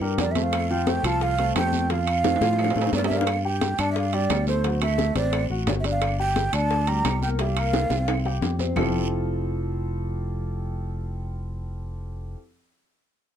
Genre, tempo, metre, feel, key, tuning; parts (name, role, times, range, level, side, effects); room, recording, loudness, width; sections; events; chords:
Afro-Cuban jazz; 175 BPM; 4/4; straight; F major; A4 = 438 Hz
warm concert grand piano; accompaniment; 0.0-12.4 s; F3 to G5; -29 LUFS; left 1 dB
fingered electric bass; bass; 0.0-12.3 s; F1 to A2; -26 LUFS; equal
bongos; percussion; 0.0-8.8 s; -32 LUFS; left 6 dB
congas; percussion; 0.0-8.8 s; -31 LUFS; left 3 dB
breathy mellow jazz flute; melody; 0.2-8.4 s; C5 to Bb5; -26 LUFS; right 3 dB
guiro; percussion; 0.2-8.8 s; -39 LUFS; right 7 dB
timbales; percussion; 0.2-8.8 s; -31 LUFS; right 9 dB
claves; percussion; 0.5-8.8 s; -38 LUFS; right 3 dB
light reverb; dark, warm production; -22 LUFS; side -9 dB against mid
0.0-3.3 A section; 3.3-8.8 B section; 8.8-11.5 C section
drum fill 2.2-3.3, 7.7-8.8
0.0 C7; 0.5 Fadd9; 3.3 Gsus2; 4.6 D9; 6.0 Gmadd9; 7.4 C7sus4; 8.8 Fmaj9